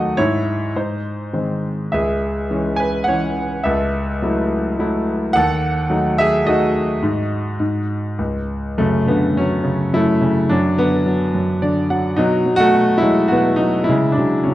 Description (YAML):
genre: classical, lyrical solo piano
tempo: 105 BPM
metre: 3/4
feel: rubato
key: F# minor from 8.8 s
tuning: A4 = 438 Hz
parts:
  - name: clear grand piano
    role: solo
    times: 0.0-14.5 s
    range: C#2 to A5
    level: -16 LUFS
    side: equal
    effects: none
room: moderate recital hall reverb, RT60 1.4 s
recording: dark, warm production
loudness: -16 LUFS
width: side -14 dB against mid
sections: 0.0-8.8 A section; 8.8-14.5 B section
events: grand piano fill 11.3-12.2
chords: 0.2 C#m/G#; 0.8 G#; 1.9 C#m; 3.7 F#m7/C#; 5.4 D#dim; 7.0 D#madd11/G#; 8.2 N.C.; 8.8 F#m; 10.5 D6/F#; 12.2 B5; 13.9 C#sus4